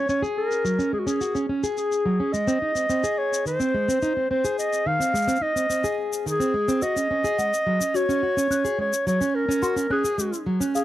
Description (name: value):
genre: folktronica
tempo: 107 BPM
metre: 4/4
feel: straight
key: Gb lydian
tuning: A4 = 439 Hz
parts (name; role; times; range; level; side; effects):
- mellow clarinet; melody; 0.0-10.8 s; Gb4 to F5; -24 LUFS; equal; tape echo
- fingerpicked plugged-in steel-string acoustic guitar; arpeggios; 0.0-10.8 s; Eb3 to Ab4; -25 LUFS; equal; vintage 12-bit sampler grit, low-pass filter, tape echo
- shaker; drums; 0.1-10.8 s; none; -34 LUFS; left 4 dB; low-pass filter on hats, low-pass filter on perc, low-pass filter on snare, low-pass filter on room
- folk marimba with soft mallets; second line; 7.4-10.8 s; Gb4 to Gb6; -30 LUFS; left 4 dB; tape echo
room: light reverb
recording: dry, close 1970s-style studio recording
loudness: -21 LUFS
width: side -14 dB against mid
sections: 0.0-10.8 A section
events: none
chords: 0.0 Gbsus2; 2.3 Ab; 6.8 Gbsus2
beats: | 0.09 0.65 1.21 1.77 | 2.34 2.90 3.46 4.02 | 4.58 5.14 5.70 6.26 | 6.82 7.38 7.94 8.50 | 9.06 9.63 10.19 10.75